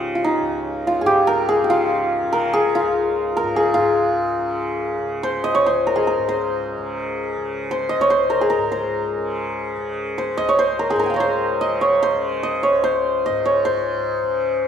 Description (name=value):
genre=indian classical, Hindustani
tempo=146 BPM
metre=3/4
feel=straight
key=Db raga yaman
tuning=A4 = 440 Hz
part: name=santur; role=melody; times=0.0-14.7 s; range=Eb4 to Eb6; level=-18 LUFS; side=equal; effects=none
part: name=tanpura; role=drone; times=0.0-14.7 s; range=Db2 to Db3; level=-29 LUFS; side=right 1 dB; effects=none
room=wet recital hall reverb, RT60 1.5 s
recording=none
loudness=-18 LUFS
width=side -8 dB against mid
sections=0.0-3.8 A section; 3.8-13.6 B section; 13.6-14.7 A section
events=speeding up 0.0-14.7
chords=none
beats=| 0.02 0.44 0.86 | 1.28 1.69 2.11 | 2.53 2.94 3.36 | 3.78 4.19 4.61 | 5.02 5.44 5.85 | 6.27 6.68 7.09 | 7.50 7.92 8.33 | 8.74 9.15 9.56 | 9.97 10.38 10.79 | 11.20 11.61 12.02 | 12.42 12.83 13.24 | 13.64 14.05 14.45